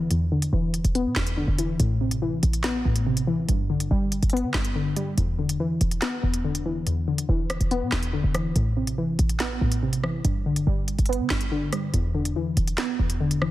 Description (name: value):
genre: hip hop, drill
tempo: 142 BPM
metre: 4/4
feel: half-time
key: E minor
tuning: A4 = 442 Hz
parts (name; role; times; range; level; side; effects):
- warbly dusty pluck; accompaniment; 0.0-13.5 s; E2 to B3; -25 LUFS; left 1 dB; chorus, low-pass filter
- short 808-style bass; bass; 0.0-13.5 s; D1 to D3; -26 LUFS; equal; none
- drill drum kit; drums; 0.1-13.5 s; handclaps, hi-hat, rim click, snare drum; -30 LUFS; equal; none
room: light reverb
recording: dense, heavily limited modern master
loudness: -22 LUFS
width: side -15 dB against mid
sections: 0.0-13.5 A section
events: filter sweep on synth pluck 0.0-1.8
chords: 0.0 E5; 1.8 Amadd9; 3.5 G; 5.2 E5; 8.6 Amadd9; 10.2 G; 11.9 E5